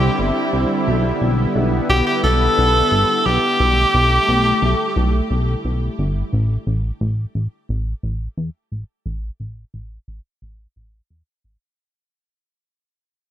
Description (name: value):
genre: synthwave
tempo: 88 BPM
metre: 4/4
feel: straight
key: A minor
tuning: A4 = 440 Hz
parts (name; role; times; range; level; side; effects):
- clear tenor saxophone; melody; 0.0-5.6 s; G4 to A4; -18 LUFS; equal; shimmer reverb, digital delay
- lush unison pad; sustained chords; 0.0-6.3 s; D3 to E4; -22 LUFS; equal; chorus, shimmer reverb
- chorused synth bass; bass; 0.0-11.6 s; G1 to E2; -19 LUFS; equal; none
room: moderate lush hall reverb, RT60 1.6 s, studio reverb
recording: bright 1980s-style digital production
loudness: -16 LUFS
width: side -11 dB against mid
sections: 0.0-6.3 A section; 6.3-11.8 B section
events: fade-out 6.3-11.8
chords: 0.0 Cadd9; 0.9 Em7; 6.3 A5